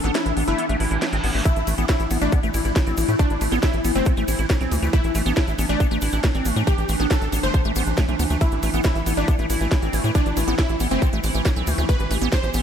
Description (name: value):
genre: psychedelic trance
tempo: 138 BPM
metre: 4/4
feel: straight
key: A minor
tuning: A4 = 440 Hz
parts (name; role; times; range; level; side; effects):
- pulsing gated texture; sustained chords; 0.0-12.6 s; E3 to G4; -27 LUFS; equal; chorus, built-in reverb, sidechain pumping
- liquid acid bass; riff; 0.0-12.6 s; A3 to E4; -28 LUFS; moving between left 3 dB and right 5 dB; phaser, auto-pan, sidechain pumping, tape echo
- tight sequencer bass; bass; 0.0-12.6 s; G1 to A2; -23 LUFS; equal; none
- drum and bass drum kit; drums; 0.0-12.6 s; hi-hat, ride cymbal, snare drum; -30 LUFS; equal; none
- supersaw stab; melody; 0.1-12.5 s; C4 to C5; -28 LUFS; equal; phaser, sidechain pumping, tape echo
- reverse cymbal and zap; sound effects; 0.8-1.5, 11.8-11.9 s; none; -35 LUFS; right 2 dB; none
- electronic kick drum; drums; 1.5-12.4 s; none; -19 LUFS; equal; none
- egg shaker; percussion; 1.5-12.6 s; none; -38 LUFS; left 3 dB; none
room: light reverb, digital ambience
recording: none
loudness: -18 LUFS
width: side -8 dB against mid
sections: 0.0-12.6 A section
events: break 0.0-1.5; reverse cymbal 0.8-1.5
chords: 0.0 A5